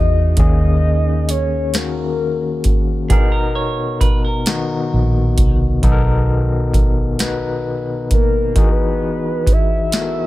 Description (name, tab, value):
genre	slow six-eight R&B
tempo	44 BPM (dotted quarters)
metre	6/8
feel	straight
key	B major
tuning	A4 = 436 Hz
part	soft octave-layered synth lead	melody	0.0-2.8, 8.1-10.3 s	A#4 to E5	-22 LUFS	left 1 dB	chorus, phaser, ping-pong delay
part	overdriven tine electric piano	accompaniment	0.0-10.3 s	B2 to B4	-21 LUFS	left 3 dB	fast tremolo
part	vintage muted fingered electric bass	bass	0.0-10.3 s	A#1 to E2	-18 LUFS	equal	none
part	booming analog drum machine	drums	0.4-10.1 s	hi-hat, kick drum, snare drum	-16 LUFS	equal	none
part	clean electric guitar	second line	3.1-5.6 s	G#4 to C#5	-26 LUFS	right 6 dB	none
room	digital ambience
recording	none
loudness	-14 LUFS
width	side -16 dB against mid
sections	0.0-10.3 A section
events	none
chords	0.4 D#7sus4; 3.1 Bmaj7; 8.6 Emaj9